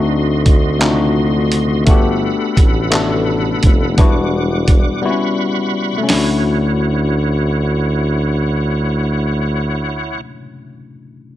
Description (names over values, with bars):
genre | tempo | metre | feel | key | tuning
slow six-eight R&B | 57 BPM (dotted quarters) | 6/8 | straight | D major | A4 = 440 Hz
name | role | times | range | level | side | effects
tine electric piano | accompaniment | 0.0-11.4 s | F#3 to A4 | -19 LUFS | left 4 dB | none
bright tonewheel organ | sustained chords | 0.0-10.2 s | G3 to D6 | -24 LUFS | right 1 dB | overdrive, chorus vibrato, fast rotary speaker
mellow tuba | bass | 0.0-10.2 s | E1 to D2 | -17 LUFS | equal | none
dusty soul sampler-style drum kit | drums | 0.5-6.3 s | handclaps, hi-hat, kick drum, snare drum | -13 LUFS | right 1 dB | none
room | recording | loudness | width
digital ambience | none | -13 LUFS | side -14 dB against mid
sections
0.0-6.1 A section; 6.1-10.3 B section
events
break 5.0-6.1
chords
0.0 D7b9; 1.9 Gmaj9; 4.0 Em9; 5.0 Em69/G; 6.1 Dmaj9